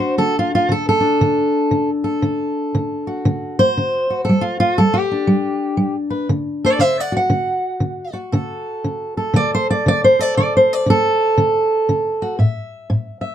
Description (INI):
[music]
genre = acoustic country blues, solo or duo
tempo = 118 BPM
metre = 4/4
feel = swing 62% on 8ths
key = D major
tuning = A4 = 440 Hz
[part]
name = fingerpicked steel-string acoustic guitar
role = solo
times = 0.0-13.3 s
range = A2 to F#5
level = -15 LUFS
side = equal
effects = none
[sound]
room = moderate small room ambience, RT60 0.5 s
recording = dark, warm production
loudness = -15 LUFS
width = side -10 dB against mid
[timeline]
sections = 0.0-13.3 A section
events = steel-string acoustic guitar solo 0.0-13.3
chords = 0.0 D; 4.3 G5; 6.3 D; 12.4 A5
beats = | 0.19 0.69 1.20 1.71 | 2.22 2.73 3.24 3.75 | 4.25 4.76 5.27 5.78 | 6.29 6.80 7.30 7.81 | 8.32 8.83 9.34 9.85 | 10.35 10.86 11.37 11.88 | 12.38 12.89